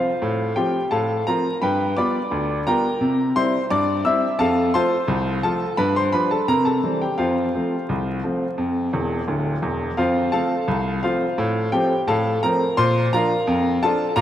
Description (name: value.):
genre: ragtime piano.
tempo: 86 BPM.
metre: 2/4.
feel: straight.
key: F major.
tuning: A4 = 440 Hz.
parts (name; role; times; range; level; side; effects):
clear baby grand piano; solo; 0.0-14.2 s; D1 to E6; -19 LUFS; equal; tape echo.
room: wet plate reverb, RT60 3.2 s.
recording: dreamy mix soaked in reverb, vinyl crackle.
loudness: -19 LUFS.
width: side -11 dB against mid.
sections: 0.0-10.0 A section; 10.0-14.2 A section.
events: grand piano fill 8.9-10.0.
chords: 0.2 F/A; 1.6 G7; 3.0 C7; 4.4 F; 5.8 G7; 6.5 C7; 7.2 F; 11.4 F/A; 12.8 Bb.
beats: | 0.21 0.91 | 1.60 2.30 | 2.99 3.69 | 4.38 5.08 | 5.77 6.46 | 7.17 7.87 | 8.58 9.28 | 9.98 10.68 | 11.38 12.07 | 12.76 13.46 | 14.15.